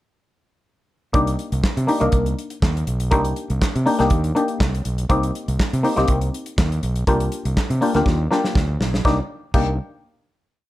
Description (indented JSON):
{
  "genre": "disco",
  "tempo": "122 BPM",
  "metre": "4/4",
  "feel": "straight",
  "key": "C minor",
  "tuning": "A4 = 440 Hz",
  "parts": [
    { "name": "muted clav", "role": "accompaniment", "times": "1.1-9.8 s", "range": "Bb3 to Bb4", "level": "-21 LUFS", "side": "left 2 dB", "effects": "phaser" },
    { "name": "overdriven fingered electric bass", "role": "bass", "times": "1.1-9.8 s", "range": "B1 to C3", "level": "-22 LUFS", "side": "equal", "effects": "none" },
    { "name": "modern studio drum kit", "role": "drums", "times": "1.1-9.7 s", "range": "crash cymbal, handclaps, hi-hat, kick drum, snare drum", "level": "-22 LUFS", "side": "equal", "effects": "none" }
  ],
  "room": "light reverb, studio reverb",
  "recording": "none",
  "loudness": "-18 LUFS",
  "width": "side -16 dB against mid",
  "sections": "1.1-9.0 verse; 9.0-10.7 final chord",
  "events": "drum fill 8.1-9.0",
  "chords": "1.1 Cm7; 5.1 Eb6; 7.1 Ebmaj7/C (rootless); 9.0 Cm7"
}